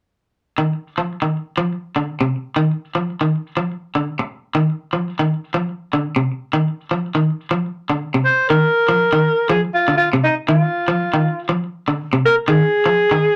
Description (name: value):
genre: afrobeat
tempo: 121 BPM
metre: 4/4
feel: swing 55% on 16ths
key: F dorian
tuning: A4 = 440 Hz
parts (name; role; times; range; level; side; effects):
- electric guitar at the edge of break-up; arpeggios; 0.6-13.3 s; C3 to F3; -20 LUFS; equal; none
- breathy alto saxophone; melody; 8.3-13.4 s; Eb4 to C5; -18 LUFS; equal; none
room: wet small room reverb, RT60 0.5 s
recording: rough rehearsal-room recording, warm saturation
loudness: -19 LUFS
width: mono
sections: 0.6-8.5 A section; 8.5-13.4 B section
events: none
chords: 0.6 F5